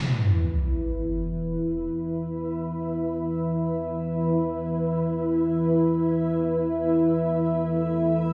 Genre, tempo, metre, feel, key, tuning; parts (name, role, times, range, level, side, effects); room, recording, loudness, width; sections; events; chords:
house; free time; A4 = 440 Hz
dark analog pad; sustained chords; 0.2-8.3 s; E3 to B4; -28 LUFS; equal; chorus
sub drop; sound effects; 0.0-1.9 s; -28 LUFS; equal
granular cloud pad; texture; 1.8-8.3 s; E4 to E5; -30 LUFS; equal; built-in reverb
wet lush hall reverb, RT60 1.9 s, digital ambience; played on a big sound system in a bare room, stone room reverb; -25 LUFS; mono
0.0-8.3 A section
impact 0.0-1.9
0.0 E5